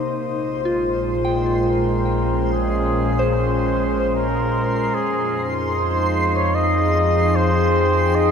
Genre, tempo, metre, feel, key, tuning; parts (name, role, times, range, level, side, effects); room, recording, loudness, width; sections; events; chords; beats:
ambient; 75 BPM; 3/4; straight; Bb dorian; A4 = 440 Hz
warbly tape-like pad; sustained chords; 0.0-8.3 s; Bb2 to G5; -20 LUFS; equal; chorus, built-in reverb, shimmer reverb
soft synth bell; arpeggios; 0.0-6.2 s; F4 to C6; -26 LUFS; left 2 dB; chorus, shimmer reverb, ping-pong delay
round analog bass; bass; 0.0-8.3 s; Bb1 to F2; -24 LUFS; equal
backwards swelling texture; texture; 0.3-8.3 s; C6; -28 LUFS; right 2 dB; built-in reverb, shimmer reverb
warm flugelhorn; melody; 0.9-8.3 s; Ab4 to Eb5; -24 LUFS; equal; shimmer reverb, ping-pong delay
wet huge ambient reverb, RT60 9.1 s; cassette tape; -17 LUFS; side -7 dB against mid
0.0-8.3 A section
fade-in on synth bell 0.0-8.3; fade-in on analog synth bass 0.0-8.3; fade-in on synth texture 0.0-8.3; fade-in on flugelhorn 0.0-8.3
0.1 Bbm9; 4.9 Fm9
| 0.14 0.94 1.74 | 2.54 3.34 4.14 | 4.94 5.74 6.54 | 7.34 8.14